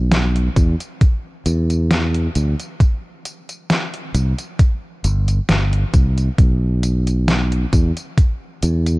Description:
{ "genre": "vaporwave", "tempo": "67 BPM", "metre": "4/4", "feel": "swing 54% on 16ths", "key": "unclear", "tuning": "A4 = 440 Hz", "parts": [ { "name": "fingered electric bass", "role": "bass", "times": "0.0-9.0 s", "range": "G1 to E2", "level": "-16 LUFS", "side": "equal", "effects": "tube saturation" }, { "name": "detuned 8-bit digital drum machine", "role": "drums", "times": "0.1-9.0 s", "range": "hi-hat, snare drum, tambourine", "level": "-22 LUFS", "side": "equal", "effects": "overdrive, vintage 12-bit sampler grit" }, { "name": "electronic kick drum", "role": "drums", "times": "0.6-8.4 s", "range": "none", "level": "-14 LUFS", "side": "equal", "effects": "overdrive, vintage 12-bit sampler grit" } ], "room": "digital ambience", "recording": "dark, warm production", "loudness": "-16 LUFS", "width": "side -23 dB against mid", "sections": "0.0-9.0 A section", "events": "none", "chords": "none" }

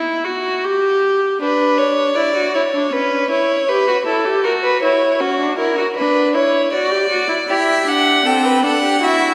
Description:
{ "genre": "classical, baroque-style fugue for string quartet", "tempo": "79 BPM", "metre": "4/4", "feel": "straight", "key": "E minor", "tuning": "A4 = 440 Hz", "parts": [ { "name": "rich viola", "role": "accompaniment", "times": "0.0-9.3 s", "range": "C4 to G4", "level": "-20 LUFS", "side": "equal", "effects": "none" }, { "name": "rich violin", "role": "second line", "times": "1.4-9.3 s", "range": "F#4 to D5", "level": "-19 LUFS", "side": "equal", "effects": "none" }, { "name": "clear violin", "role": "melody", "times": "7.5-9.3 s", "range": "E5 to G5", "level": "-19 LUFS", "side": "equal", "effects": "none" } ], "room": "wet concert hall reverb, RT60 2.3 s", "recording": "recorded in a church or concert hall", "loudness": "-16 LUFS", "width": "mono", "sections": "0.0-9.3 A section", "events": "none", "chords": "0.0 N.C.; 1.4 Bm/D; 2.9 C#m7b5; 4.4 F#7; 6.0 Bm/D; 7.5 Em" }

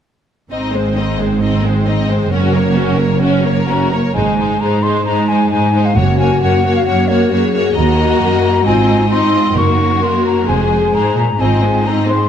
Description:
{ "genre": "cinematic", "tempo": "133 BPM", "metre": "4/4", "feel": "straight", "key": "unclear", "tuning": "A4 = 442 Hz", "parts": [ { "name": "rich symphonic violin section", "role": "melody", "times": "0.5-12.3 s", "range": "Bb4 to Eb5", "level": "-24 LUFS", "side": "left 3 dB", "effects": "none" }, { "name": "dark symphonic violin section", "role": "second line", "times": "0.5-12.3 s", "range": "C4 to Bb4", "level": "-22 LUFS", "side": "left 5 dB", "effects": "none" }, { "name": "rich symphonic viola section", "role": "accompaniment", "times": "0.5-12.3 s", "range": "Ab3 to Db4", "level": "-19 LUFS", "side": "right 1 dB", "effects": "none" }, { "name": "rich symphonic cello section", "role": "bass", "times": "0.5-12.3 s", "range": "Eb2 to Bb2", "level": "-17 LUFS", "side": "right 2 dB", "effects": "none" }, { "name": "warm symphonic double bass section", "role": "bass", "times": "0.5-11.8 s", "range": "F1 to Eb2", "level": "-19 LUFS", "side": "right 3 dB", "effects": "none" }, { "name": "concert flute", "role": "second line", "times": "3.7-12.3 s", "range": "Db5 to Db6", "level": "-18 LUFS", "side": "left 2 dB", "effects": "none" }, { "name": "warm French horn section", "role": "sustained chords", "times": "5.1-12.3 s", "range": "Eb4 to Ab4", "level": "-18 LUFS", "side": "left 5 dB", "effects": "none" }, { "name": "timpani", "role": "percussion", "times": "6.0-6.6 s", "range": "Gb2", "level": "-19 LUFS", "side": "right 1 dB", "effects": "none" } ], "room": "moderate scoring stage reverb, RT60 1.7 s", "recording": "lossy compression artefacts", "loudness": "-12 LUFS", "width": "side -8 dB against mid", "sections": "0.5-4.1 A section; 4.1-12.3 B section", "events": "none", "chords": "0.5 Ab; 2.3 Gb; 4.1 Ab; 6.0 Gb; 7.8 Ebm; 8.7 Ab; 9.6 Gb; 10.5 Fm; 11.4 Ab" }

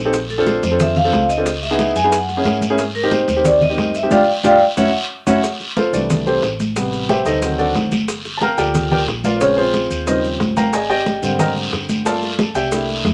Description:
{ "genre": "Afro-Cuban jazz", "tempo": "181 BPM", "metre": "4/4", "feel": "straight", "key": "F major", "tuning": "A4 = 440 Hz", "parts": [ { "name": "hollow-body short-scale fingered electric bass", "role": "bass", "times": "0.0-13.1 s", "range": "Gb1 to Ab2", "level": "-29 LUFS", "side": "equal", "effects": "none" }, { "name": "warm baby grand piano", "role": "accompaniment", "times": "0.1-13.1 s", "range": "C3 to Bb5", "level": "-21 LUFS", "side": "equal", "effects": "none" }, { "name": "bongos", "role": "percussion", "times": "0.1-13.1 s", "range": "none", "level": "-30 LUFS", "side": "equal", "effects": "none" }, { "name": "congas", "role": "percussion", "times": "0.1-13.1 s", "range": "none", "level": "-24 LUFS", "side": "equal", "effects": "none" }, { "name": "guiro", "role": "percussion", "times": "0.1-13.1 s", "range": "none", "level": "-30 LUFS", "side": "equal", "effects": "none" }, { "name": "maracas", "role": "percussion", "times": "0.1-13.1 s", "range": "none", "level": "-35 LUFS", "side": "equal", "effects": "none" }, { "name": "vibraphone with medium hard mallets", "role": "melody", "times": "0.3-5.4 s", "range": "A4 to Ab5", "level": "-19 LUFS", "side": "equal", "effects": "none" } ], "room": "moderate club reverb, RT60 0.6 s", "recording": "none", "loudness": "-17 LUFS", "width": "mono", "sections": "0.0-5.4 A section; 5.4-13.1 B section", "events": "band accent 4.1-5.4; drum fill 4.8-5.4; grand piano solo 5.4-13.1", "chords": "0.1 Bbmaj9; 1.5 Dbm7; 2.1 Gb9; 2.8 Abmaj7; 4.1 G5; 4.8 Gb5; 5.4 Fmaj9; 6.8 Am7; 7.4 D7b9; 8.1 Gm7; 9.4 Bbm9; 10.1 Eb13; 10.7 Abmaj9#11; 12.1 C13" }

